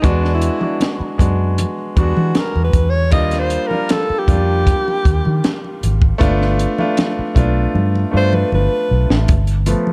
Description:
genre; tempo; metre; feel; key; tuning
lush 1970s-style soul; 78 BPM; 4/4; straight; unclear; A4 = 440 Hz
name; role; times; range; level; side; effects
warm alto saxophone; melody; 0.0-9.3 s; D4 to Eb5; -23 LUFS; equal; none
clear grand piano; accompaniment; 0.0-9.9 s; F3 to F#4; -23 LUFS; equal; none
vintage muted fingered electric bass; bass; 0.0-9.7 s; G1 to E3; -19 LUFS; equal; none
compact cocktail drum kit; drums; 0.0-9.8 s; hi-hat, kick drum, snare drum; -19 LUFS; equal; none
congas; percussion; 0.0-9.9 s; none; -30 LUFS; equal; none
room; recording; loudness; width
light reverb, small room reverb; dark, warm production; -16 LUFS; mono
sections
0.0-9.3 A section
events
alto saxophone solo 0.0-9.3; drum fill 7.7-9.3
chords
0.0 E9; 3.1 Ebmaj7; 6.2 G7

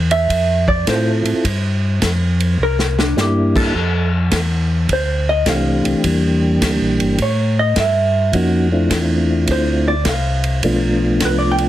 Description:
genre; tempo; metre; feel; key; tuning
soul jazz organ trio; 104 BPM; 4/4; swing 67% on 8ths; F major from 3.7 s; A4 = 439 Hz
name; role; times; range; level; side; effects
mellow tonewheel organ; bass; 0.0-11.7 s; G1 to A2; -18 LUFS; equal; slow rotary speaker
vintage hollow-body jazz guitar; accompaniment; 0.1-11.6 s; D4 to G5; -19 LUFS; right 2 dB; none
warm soul drum kit; drums; 0.1-11.7 s; crash cymbal, hi-hat, kick drum, ride cymbal, snare drum; -22 LUFS; equal; none
percussive tonewheel organ; melody; 0.9-11.7 s; E3 to A4; -17 LUFS; equal; slow rotary speaker, chorus vibrato
room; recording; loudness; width
moderate club reverb, RT60 0.6 s; heavily compressed radio sound, multiband compression; -14 LUFS; side -13 dB against mid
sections
0.0-3.7 A section; 3.7-11.7 A section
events
hollow-body jazz guitar solo 0.0-11.7; drum fill 2.6-3.2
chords
0.0 Dm7; 1.4 Fsus2; 2.6 C7; 3.7 Fmaj13; 6.0 Em7b5; 7.2 A5; 8.3 Dm9; 10.6 Bm7b5

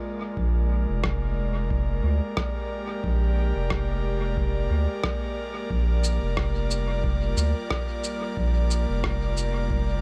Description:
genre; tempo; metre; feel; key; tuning
ambient dub; 90 BPM; 4/4; swing 58% on 16ths; Bb mixolydian; A4 = 441 Hz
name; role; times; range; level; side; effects
airy breathy pad; sustained chords; 0.0-10.0 s; G3 to D5; -33 LUFS; equal; chorus
round analog bass; bass; 0.4-10.0 s; F1 to D2; -27 LUFS; equal; none
electronic kick drum; drums; 0.4-9.9 s; none; -33 LUFS; equal; overdrive
electronic rim click and cabasa; drums; 1.0-9.5 s; none; -35 LUFS; equal; overdrive, dub echo
room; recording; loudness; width
little or no reverb; none; -26 LUFS; mono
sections
0.0-10.0 A section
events
none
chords
0.0 Bb7; 5.7 Gm7

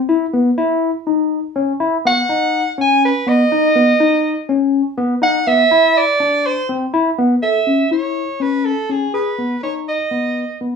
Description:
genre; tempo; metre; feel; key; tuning
progressive instrumental, progressive; 246 BPM (eighths); 7/8; straight; unclear; A4 = 436 Hz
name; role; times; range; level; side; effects
barky tine electric piano; arpeggios; 0.1-10.8 s; B3 to A4; -17 LUFS; left 3 dB; overdrive, phaser
mellow soprano saxophone; melody; 2.1-10.6 s; G#4 to G#5; -16 LUFS; right 3 dB; none
room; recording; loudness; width
wet small room reverb, RT60 0.6 s; studio ambience; -14 LUFS; side -6 dB against mid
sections
0.0-7.4 A section; 7.4-10.8 B section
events
soprano saxophone solo 0.0-7.4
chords
0.0 Cmaj7 (rootless); 0.6 Badd11; 2.3 Badd9; 5.7 Cmaj7; 7.4 A (rootless); 9.1 G#m (rootless)

